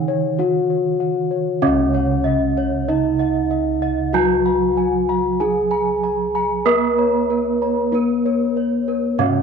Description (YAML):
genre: Javanese gamelan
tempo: 48 BPM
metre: 4/4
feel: straight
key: C# slendro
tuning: A4 = 436 Hz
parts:
  - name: gamelan-type bronze metallophone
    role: melody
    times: 0.0-9.4 s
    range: B3-40c to B4-40c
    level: -19 LUFS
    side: left 2 dB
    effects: none
  - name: gamelan-type bronze metallophone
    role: accompaniment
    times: 0.0-9.4 s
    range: C#3 to B3-40c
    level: -23 LUFS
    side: right 11 dB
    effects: none
  - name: gamelan-type bossed gongs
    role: arpeggios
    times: 0.0-9.4 s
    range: B4-40c to B5-40c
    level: -26 LUFS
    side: left 11 dB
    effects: none
  - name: gamelan-type bossed gongs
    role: bass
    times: 0.0-9.4 s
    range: C#2 to B4-40c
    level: -27 LUFS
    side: left 1 dB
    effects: none
  - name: gamelan-type bronze metallophone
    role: arpeggios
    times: 1.6-9.4 s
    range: B4-40c to B5-40c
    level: -27 LUFS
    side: right 7 dB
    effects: none
room: wet spring reverb, RT60 2.1 s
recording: 1960s-style stereo with parts hard left and right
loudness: -16 LUFS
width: side -6 dB against mid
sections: 0.0-1.6 A section; 1.6-9.4 B section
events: none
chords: none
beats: 0.39 | 1.63 2.89 4.15 5.42 | 6.68 7.94 9.20